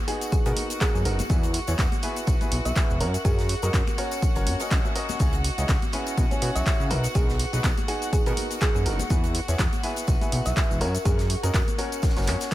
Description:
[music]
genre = piano house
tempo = 123 BPM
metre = 4/4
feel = swing 56% on 16ths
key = unclear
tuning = A4 = 441 Hz
[part]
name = warm symphonic violin section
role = sustained chords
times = 0.0-12.5 s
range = F#4 to F#5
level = -34 LUFS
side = equal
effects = sidechain pumping
[part]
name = thumb-piano-like synth pluck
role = melody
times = 0.1-12.1 s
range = G#4 to E5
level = -32 LUFS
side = right 1 dB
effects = chorus, analog delay
[part]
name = clear grand piano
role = riff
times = 0.1-12.5 s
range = B3 to E5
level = -33 LUFS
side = equal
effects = sidechain pumping, analog delay
[part]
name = huge arena drum kit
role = drums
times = 0.1-12.5 s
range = hi-hat, snare drum, tambourine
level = -42 LUFS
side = right 1 dB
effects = none
[part]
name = punchy analog drum machine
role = drums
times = 0.1-12.5 s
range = cabasa, finger snaps, handclaps, hi-hat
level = -32 LUFS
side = equal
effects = none
[part]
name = tambourine and congas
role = percussion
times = 0.2-12.5 s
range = none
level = -39 LUFS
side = left 6 dB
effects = none
[part]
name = electronic kick drum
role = drums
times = 0.3-12.5 s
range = none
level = -24 LUFS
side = equal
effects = none
[part]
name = fat analog bass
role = bass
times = 0.5-12.5 s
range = E1 to C#3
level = -26 LUFS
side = equal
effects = sidechain pumping
[sound]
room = studio reverb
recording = echo-heavy mix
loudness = -22 LUFS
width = side -15 dB against mid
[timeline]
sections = 0.0-12.5 A section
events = none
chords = 0.0 Bmaj7; 1.3 E; 3.0 F#; 5.2 C#m; 6.9 Bmaj7; 9.1 E; 10.8 F#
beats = 0.32 0.81 | 1.30 1.79 2.27 2.76 | 3.25 3.74 4.22 4.71 | 5.20 5.69 6.18 6.66 | 7.15 7.64 8.13 8.62 | 9.10 9.59 10.08 10.57 | 11.05 11.54 12.03 12.52

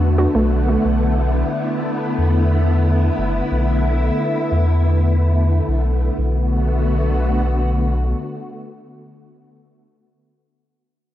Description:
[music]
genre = IDM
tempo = 90 BPM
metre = 4/4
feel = straight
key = B minor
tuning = A4 = 440 Hz
[part]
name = soft string machine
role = sustained chords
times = 0.0-9.3 s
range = D3 to F#4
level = -21 LUFS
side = left 1 dB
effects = ensemble chorus
[part]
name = warm sub bass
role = bass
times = 0.0-8.1 s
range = F#1 to E2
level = -17 LUFS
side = equal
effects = none
[part]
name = warbly dusty pluck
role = arpeggios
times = 0.2-0.8 s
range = A3 to F#4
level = -21 LUFS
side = right 2 dB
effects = chorus, analog delay
[sound]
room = little or no reverb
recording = dry, gritty hardware recording, cassette tape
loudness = -16 LUFS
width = side -13 dB against mid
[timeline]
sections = 0.0-6.2 A section; 6.2-8.8 B section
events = none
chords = 0.0 Bm7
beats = 0.18 | 0.85 1.51 2.18 2.85 | 3.52 4.18 4.85 5.51 | 6.18 6.85 7.51 8.18

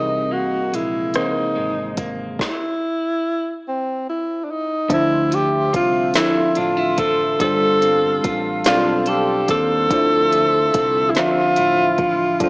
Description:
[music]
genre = slow six-eight R&B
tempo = 48 BPM (dotted quarters)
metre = 6/8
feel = straight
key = D minor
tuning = A4 = 443 Hz
[part]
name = breathy tenor saxophone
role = melody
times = 0.0-12.5 s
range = C4 to A4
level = -18 LUFS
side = equal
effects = none
[part]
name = electric guitar at the edge of break-up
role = second line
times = 0.0-12.5 s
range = G2 to A4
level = -27 LUFS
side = equal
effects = none
[part]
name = tine electric piano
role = accompaniment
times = 0.0-12.5 s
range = C3 to E5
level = -24 LUFS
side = equal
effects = medium stereo tremolo
[part]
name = mellow fretless electric bass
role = bass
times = 0.0-12.5 s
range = G1 to Eb2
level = -30 LUFS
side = equal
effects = none
[part]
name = smooth R&B drum kit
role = drums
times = 0.7-12.5 s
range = hi-hat, kick drum, rim click, snare drum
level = -23 LUFS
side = equal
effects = none
[part]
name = chorused pulse-width pad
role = sustained chords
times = 4.9-12.5 s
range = F3 to C6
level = -27 LUFS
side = equal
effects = none
[sound]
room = light reverb, digital ambience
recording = worn, warbling old tape, cassette tape, warbly pitch drift, small speaker sound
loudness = -16 LUFS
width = side -36 dB against mid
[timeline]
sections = 0.0-4.9 A section; 4.9-12.5 B section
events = none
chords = 0.0 C7alt; 4.9 Dm9; 7.4 G9sus4; 9.9 Dm9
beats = 1.15 | 2.40 3.65 | 4.90 6.15 | 7.40 8.65 | 9.90 11.15 | 12.40

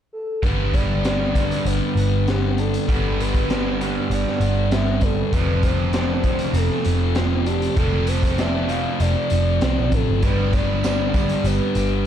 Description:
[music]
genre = rock, shoegaze and dream pop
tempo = 98 BPM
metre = 4/4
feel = straight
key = G mixolydian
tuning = A4 = 440 Hz
[part]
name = pure breathy sine lead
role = melody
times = 0.1-12.1 s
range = F4 to F5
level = -27 LUFS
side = equal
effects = chorus, analog delay
[part]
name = electric guitar through a small old amp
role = arpeggios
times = 0.4-12.1 s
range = F3 to D4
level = -32 LUFS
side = equal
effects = lush chorus, analog delay
[part]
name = crunchy overdriven guitar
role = riff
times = 0.4-12.1 s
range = F3 to B4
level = -28 LUFS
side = right 13 dB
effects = reverse reverb
[part]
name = raw garage guitar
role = riff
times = 0.4-12.1 s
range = F2 to G3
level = -28 LUFS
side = equal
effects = overdrive
[part]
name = thick fuzz guitar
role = riff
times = 0.4-12.1 s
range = F2 to G3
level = -27 LUFS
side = left 9 dB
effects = distortion, wide subtle chorus
[part]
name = vintage muted picked electric bass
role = bass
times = 0.4-12.1 s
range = F1 to C2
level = -22 LUFS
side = equal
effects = none
[part]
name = raw garage drum kit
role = drums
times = 0.4-11.9 s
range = hi-hat, kick drum, snare drum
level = -24 LUFS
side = equal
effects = none
[part]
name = tambourine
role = percussion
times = 10.2-11.9 s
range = none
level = -42 LUFS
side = right 14 dB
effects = none
[sound]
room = small room ambience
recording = dark, warm production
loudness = -18 LUFS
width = side -9 dB against mid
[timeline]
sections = 0.4-12.1 A section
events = none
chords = 0.4 G; 5.3 F6; 10.2 G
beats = | 0.43 1.04 1.65 2.27 | 2.88 3.49 4.10 4.72 | 5.33 5.94 6.55 7.17 | 7.78 8.39 9.01 9.62 | 10.23 10.84 11.45 12.06

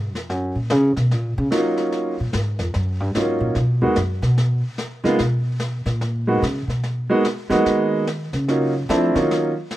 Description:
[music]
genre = jazz piano trio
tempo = 147 BPM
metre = 4/4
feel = swing 64% on 8ths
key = Eb minor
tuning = A4 = 439 Hz
[part]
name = upright bass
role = bass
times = 0.0-9.5 s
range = Eb2 to F3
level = -21 LUFS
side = equal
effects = none
[part]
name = snare drum and brushed snare drum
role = drums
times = 0.2-9.8 s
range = none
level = -30 LUFS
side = left 1 dB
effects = none
[part]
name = clear concert grand piano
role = melody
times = 1.5-9.5 s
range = F3 to Gb4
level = -19 LUFS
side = right 1 dB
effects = none
[sound]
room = small room reverb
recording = rough home demo mix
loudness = -18 LUFS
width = side -14 dB against mid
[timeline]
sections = 0.0-9.8 A section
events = upright bass solo 0.0-9.8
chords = 0.0 Ebm9; 3.6 Abmadd9; 8.5 Ebm9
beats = | 0.30 0.70 1.11 1.52 | 1.93 2.34 2.75 3.15 | 3.56 3.97 4.38 4.79 | 5.20 5.61 6.02 6.42 | 6.83 7.25 7.66 8.06 | 8.47 8.88 9.29 9.71

